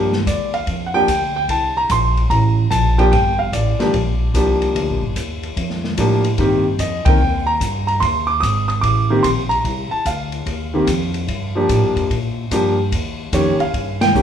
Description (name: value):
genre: jazz piano trio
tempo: 147 BPM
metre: 4/4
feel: swing 66% on 8ths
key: G minor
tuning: A4 = 440 Hz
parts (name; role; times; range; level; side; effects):
- warm concert grand piano; melody; 0.0-14.2 s; Eb3 to Eb6; -18 LUFS; equal; none
- upright bass; bass; 0.0-14.2 s; G1 to Bb2; -20 LUFS; right 1 dB; none
- open jazz drum kit; drums; 0.1-14.2 s; hi-hat, kick drum, ride cymbal, snare drum; -24 LUFS; left 2 dB; none
room: wet large studio reverb, RT60 1.2 s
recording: band playing live in one room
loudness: -15 LUFS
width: side -9 dB against mid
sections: 0.0-14.2 A section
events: band accent 7.0, 13.9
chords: 0.0 G7(no3); 1.5 C5; 3.1 Gm7; 6.4 Cm7 (rootless); 11.3 Gm7; 12.9 Eb7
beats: 0.26 0.67 1.08 | 1.49 1.89 2.30 2.71 | 3.12 3.53 3.94 4.34 | 4.75 5.16 5.57 5.98 | 6.39 6.79 7.20 7.61 | 8.02 8.43 8.83 9.24 | 9.65 10.06 10.47 10.87 | 11.28 11.69 12.10 12.51 | 12.91 13.32 13.73 14.14